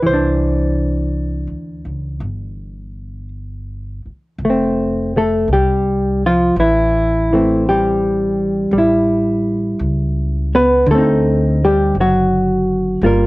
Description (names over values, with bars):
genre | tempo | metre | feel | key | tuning
jazz ballad | 56 BPM | 4/4 | swing 68% on 8ths | C major, F major from 4.4 s | A4 = 441 Hz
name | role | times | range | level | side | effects
hollow-body jazz guitar | accompaniment | 0.0-13.3 s | D3 to C5 | -14 LUFS | equal | none
upright bass | bass | 0.0-13.3 s | F1 to D2 | -21 LUFS | equal | none
room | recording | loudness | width
moderate studio reverb, RT60 0.5 s | home recording on cassette | -13 LUFS | side -20 dB against mid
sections
0.0-4.4 A section; 4.4-13.3 B section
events
none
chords
0.0 Cadd9; 4.4 Fmaj7; 8.7 A5; 10.9 D7b9